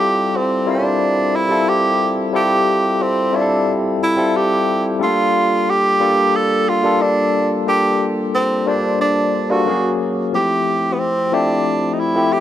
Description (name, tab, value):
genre	soul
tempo	90 BPM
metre	4/4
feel	straight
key	F major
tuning	A4 = 440 Hz
part	breathy tenor saxophone	melody	0.0-12.4 s	B3 to A4	-17 LUFS	right 2 dB	tape echo
part	barky tine electric piano	accompaniment	0.0-12.4 s	F3 to F5	-18 LUFS	left 3 dB	auto-pan
room	light reverb, small room ambience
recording	none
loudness	-14 LUFS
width	side -12 dB against mid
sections	0.0-12.4 A section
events	none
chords	0.0 Fmaj9; 5.0 Gm9; 9.7 Gbmaj9; 10.3 Fmaj9